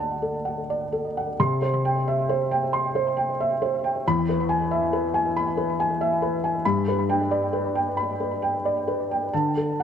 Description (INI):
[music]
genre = neoclassical minimalist piano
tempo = 45 BPM (dotted quarters)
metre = 6/8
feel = uneven beats, rubato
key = C lydian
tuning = A4 = 445 Hz
[part]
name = felt-muted upright piano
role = solo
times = 0.0-9.8 s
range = D2 to C6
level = -22 LUFS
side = equal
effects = tape echo
[sound]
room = light reverb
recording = none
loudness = -22 LUFS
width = side -8 dB against mid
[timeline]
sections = 0.0-1.4 A section; 1.4-9.8 B section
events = none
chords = 0.0 D; 1.4 C; 4.0 E; 6.6 G; 9.3 D5